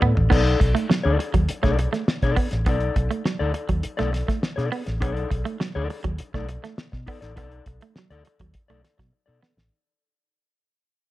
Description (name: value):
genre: funk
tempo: 102 BPM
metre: 4/4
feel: straight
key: unclear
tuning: A4 = 440 Hz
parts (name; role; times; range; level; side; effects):
- mellow electric guitar; accompaniment; 0.0-9.6 s; D#4 to D5; -28 LUFS; left 5 dB; spring reverb
- semi-hollow electric guitar; riff; 0.0-9.5 s; F#3 to B3; -28 LUFS; right 6 dB; none
- vintage muted fingered electric bass; bass; 0.0-9.7 s; A1 to B2; -24 LUFS; equal; none
- cloth-damped thuddy drum kit; drums; 0.0-9.7 s; crash cymbal, hi-hat, kick drum, snare drum, toms; -24 LUFS; equal; none
room: little or no reverb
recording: dark, warm production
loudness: -21 LUFS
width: side -16 dB against mid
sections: 0.3-9.7 A section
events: drum fill 0.0-0.3, 9.1-9.7; fade-out 0.3-9.7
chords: 0.3 B7#9